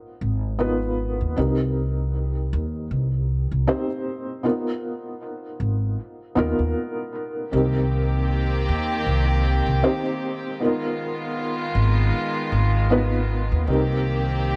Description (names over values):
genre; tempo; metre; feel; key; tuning
trip hop; 78 BPM; 4/4; swing 58% on 16ths; unclear; A4 = 441 Hz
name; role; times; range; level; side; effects
felt-muted upright piano; accompaniment; 0.0-14.6 s; Cb4 to C5; -28 LUFS; equal; tremolo, tape echo
upright bass; bass; 0.2-14.6 s; Ab1 to Eb2; -24 LUFS; equal; none
warm studio string section; sustained chords; 7.5-14.6 s; Eb3 to G4; -29 LUFS; equal; none
room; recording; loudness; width
studio ambience; nothing above 10.4 kHz; -23 LUFS; mono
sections
0.0-7.5 A section; 7.5-14.6 B section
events
none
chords
0.0 Abm6; 1.4 Cm7; 4.4 Abm6 (rootless); 7.5 Cm7; 10.6 Abm6; 13.7 Cm7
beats
0.60 | 1.36 2.13 2.90 3.67 | 4.44 5.21 5.98 6.75 | 7.52 8.29 9.06 9.83 | 10.60 11.37 12.13 12.90 | 13.67 14.44